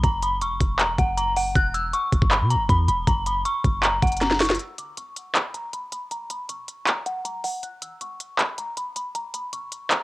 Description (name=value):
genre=hip hop, trap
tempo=158 BPM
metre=4/4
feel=half-time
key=unclear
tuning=A4 = 440 Hz
part: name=dark detuned synth bell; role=melody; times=0.0-10.0 s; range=F#5 to F#6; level=-26 LUFS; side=equal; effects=chorus, low-pass filter, cassette tape
part: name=clean 808-style bass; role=bass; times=0.0-4.6 s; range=E1 to B2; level=-26 LUFS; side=equal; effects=none
part: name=trap drum kit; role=drums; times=0.0-10.0 s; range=handclaps, hi-hat, kick drum, snare drum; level=-22 LUFS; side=equal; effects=overdrive, cassette tape
room=little or no reverb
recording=home recording on cassette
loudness=-21 LUFS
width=side -19 dB against mid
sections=0.0-4.6 A section; 4.6-10.0 B section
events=drum fill 4.2-4.6; break 4.6-10.0; filter sweep on synth bell 4.6-10.0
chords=0.0 F#5; 1.6 Em; 3.1 F#5; 4.6 N.C.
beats=| 0.04 0.41 0.80 1.18 | 1.55 1.93 2.31 2.69 | 3.07 3.45 3.83 4.21 | 4.59 4.97 5.35 5.73 | 6.11 6.49 6.87 7.25 | 7.63 8.01 8.39 8.77 | 9.15 9.53 9.91